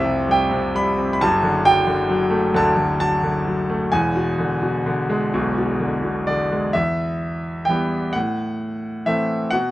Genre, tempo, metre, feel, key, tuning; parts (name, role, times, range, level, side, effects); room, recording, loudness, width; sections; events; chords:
classical, lyrical solo piano; 44 BPM (dotted quarters); 6/8; rubato; A4 = 443 Hz
bright concert grand piano; solo; 0.0-9.7 s; E1 to B5; -18 LUFS; equal
little or no reverb; close, detailed microphones; -18 LUFS; side -16 dB against mid
0.0-6.7 A section; 6.7-9.7 B section
0.0 Fsus2; 1.2 D/F#; 3.9 E7; 6.7 Em; 8.1 Am